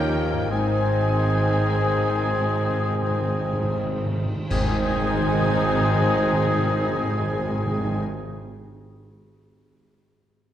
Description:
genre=classical, slow romantic movement for symphony orchestra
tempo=43-52 BPM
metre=3/4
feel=rubato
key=Ab major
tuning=A4 = 441 Hz
part: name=warm symphonic violin section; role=melody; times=0.0-8.0 s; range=G5 to Ab5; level=-34 LUFS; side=left 4 dB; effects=none
part: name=dark clarinet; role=second line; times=0.0-8.0 s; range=C5 to Db5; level=-33 LUFS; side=left 1 dB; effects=none
part: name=mellow hollow silver concert flute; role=second line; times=0.0-8.0 s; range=Eb6 to F6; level=-35 LUFS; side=left 3 dB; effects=none
part: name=rich symphonic violin section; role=second line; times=0.0-8.0 s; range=C4 to Eb4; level=-34 LUFS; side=left 3 dB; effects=none
part: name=warm oboe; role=second line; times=0.0-8.0 s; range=G4 to Ab4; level=-34 LUFS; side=left 1 dB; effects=none
part: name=rich symphonic viola section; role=accompaniment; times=0.0-8.0 s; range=Eb3 to C4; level=-32 LUFS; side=equal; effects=none
part: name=warm bassoon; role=accompaniment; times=0.0-8.0 s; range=Bb3 to C4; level=-31 LUFS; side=equal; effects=none
part: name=clear trombone section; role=sustained chords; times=0.0-8.0 s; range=Eb3 to Bb3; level=-33 LUFS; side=right 1 dB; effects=none
part: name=mellow French horn section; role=sustained chords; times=0.0-8.0 s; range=C4 to Eb4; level=-33 LUFS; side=left 3 dB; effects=none
part: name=concert harp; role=arpeggios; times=0.0-8.4 s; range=Ab2 to Eb5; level=-35 LUFS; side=left 5 dB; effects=none
part: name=clear trumpet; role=stabs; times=0.0-8.0 s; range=G4 to Ab4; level=-32 LUFS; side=equal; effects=none
part: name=mellow tuba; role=bass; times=0.0-8.0 s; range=Ab1 to Eb2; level=-32 LUFS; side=right 2 dB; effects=none
part: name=rich symphonic double bass section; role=bass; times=0.0-8.0 s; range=Ab1 to Eb2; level=-30 LUFS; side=right 2 dB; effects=none
part: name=warm symphonic cello section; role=bass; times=0.0-8.0 s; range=Ab2 to Eb3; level=-30 LUFS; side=right 1 dB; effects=none
part: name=cymbal swell, clash cymbals and concert bass drum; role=percussion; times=0.5-7.1 s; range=none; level=-34 LUFS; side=equal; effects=none
part: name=timpani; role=percussion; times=0.5-8.0 s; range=Ab2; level=-30 LUFS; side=right 1 dB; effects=none
room=wet scoring stage reverb, RT60 1.8 s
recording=worn, warbling old tape, cassette tape, warbly pitch drift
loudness=-20 LUFS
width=side -11 dB against mid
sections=0.0-4.5 A section; 4.5-8.5 B section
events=slowing down 0.0-4.5; timpani fill 0.5-4.5; band accent 4.5-5.8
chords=0.0 Eb9; 0.5 Ab

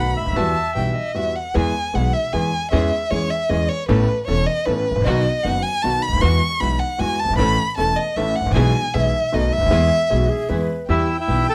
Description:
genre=tango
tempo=154 BPM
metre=3/4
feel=rubato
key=E major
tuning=A4 = 440 Hz
part: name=bandoneon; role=melody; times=0.0-1.1, 10.9-11.5 s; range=E4 to A5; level=-24 LUFS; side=equal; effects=none
part: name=warm violin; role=second line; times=0.0-11.5 s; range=B4 to C#6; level=-24 LUFS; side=equal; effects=none
part: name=warm concert grand piano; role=accompaniment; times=0.0-11.4 s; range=E1 to A4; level=-25 LUFS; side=equal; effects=none
part: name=dark chamber string section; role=stabs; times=0.0-11.4 s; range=G3 to A4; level=-32 LUFS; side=equal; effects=none
part: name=upright bass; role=bass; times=0.0-11.4 s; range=E1 to E2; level=-25 LUFS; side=equal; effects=none
part: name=breathy mellow concert flute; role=second line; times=10.1-10.9 s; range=F#4 to B4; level=-28 LUFS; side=equal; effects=none
room=light reverb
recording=close, detailed microphones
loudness=-20 LUFS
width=mono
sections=0.0-1.6 A section; 1.6-10.9 B section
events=violin solo 1.6-10.9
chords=0.4 Emadd9; 1.6 E; 2.7 C#m/E; 3.9 Aadd9; 5.1 B; 6.2 Eadd9; 7.4 A; 8.6 E/B; 9.3 B7; 9.7 E; 10.9 Em

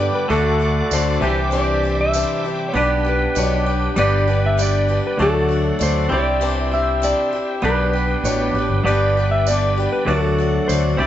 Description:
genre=folk rock and heartland rock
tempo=98 BPM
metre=4/4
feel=straight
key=unclear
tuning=A4 = 440 Hz
part: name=clean lap steel guitar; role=melody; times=0.0-11.1 s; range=A4 to E5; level=-22 LUFS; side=left 1 dB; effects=none
part: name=picked swing-style acoustic guitar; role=accompaniment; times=0.0-11.1 s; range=G2 to G4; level=-25 LUFS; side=left 5 dB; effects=none
part: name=bright tonewheel organ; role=sustained chords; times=0.0-11.1 s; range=D4 to D6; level=-30 LUFS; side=equal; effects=slow rotary speaker
part: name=twangy electric guitar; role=riff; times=0.0-11.1 s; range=G2 to D5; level=-22 LUFS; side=right 1 dB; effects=none
part: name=fingered electric bass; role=bass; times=0.0-11.1 s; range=G1 to D2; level=-21 LUFS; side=equal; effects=none
part: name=tambourine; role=percussion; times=0.9-10.8 s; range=none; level=-31 LUFS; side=right 7 dB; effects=none
room=moderate large studio reverb, RT60 1.1 s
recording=band playing live in one room, nothing above 8.0 kHz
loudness=-16 LUFS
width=side -11 dB against mid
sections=0.0-11.1 A section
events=none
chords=0.3 D; 1.2 Cadd9; 2.8 G/B; 4.0 G; 5.2 D; 6.1 Cadd9; 7.6 G/B; 8.9 G; 10.1 D

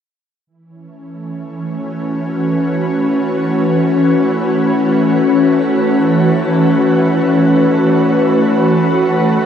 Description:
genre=ambient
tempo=free time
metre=none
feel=none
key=A major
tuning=A4 = 440 Hz
part: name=ethereal airy pad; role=sustained chords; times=1.2-9.5 s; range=E3 to B4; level=-12 LUFS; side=equal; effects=ensemble chorus, built-in reverb
part: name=bowed-like drone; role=drone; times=3.9-9.5 s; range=none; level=barely audible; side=none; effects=none
room=wet shimmer reverb, RT60 8.1 s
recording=none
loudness=-11 LUFS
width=side -8 dB against mid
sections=0.5-9.5 A section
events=none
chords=0.5 A69

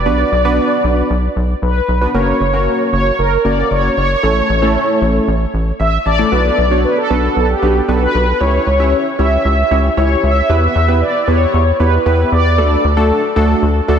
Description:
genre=synth-pop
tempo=115 BPM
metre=4/4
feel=straight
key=B minor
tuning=A4 = 440 Hz
part: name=mellow synth brass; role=melody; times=0.0-13.1 s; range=G4 to E5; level=-16 LUFS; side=equal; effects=chorus, tape echo
part: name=rubbery square bass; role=bass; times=0.0-14.0 s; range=F#1 to E2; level=-15 LUFS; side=equal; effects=none
part: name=warm analog keys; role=accompaniment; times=0.1-14.0 s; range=A3 to A5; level=-17 LUFS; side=equal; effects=chorus
room=wet lush hall reverb, RT60 2.4 s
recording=dreamy mix soaked in reverb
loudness=-12 LUFS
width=side -8 dB against mid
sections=0.0-6.3 A section; 6.3-14.0 B section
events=synth keys fill 5.5-6.3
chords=0.1 Bm; 2.1 F#; 4.2 A; 6.3 Bm; 8.4 C#dim; 10.5 Em; 12.6 D

